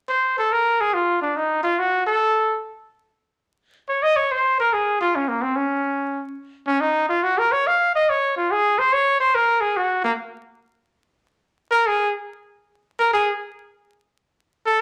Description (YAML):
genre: jazz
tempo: 143 BPM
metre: 4/4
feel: swing 66% on 8ths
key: Bb minor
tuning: A4 = 438 Hz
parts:
  - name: bright trumpet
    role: solo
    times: 0.1-14.8 s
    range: Bb3 to F5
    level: -20 LUFS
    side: equal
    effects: none
room: wet large studio reverb, RT60 0.9 s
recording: vinyl crackle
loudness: -21 LUFS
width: mono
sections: 0.0-3.0 A section; 3.0-14.8 B section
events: none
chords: none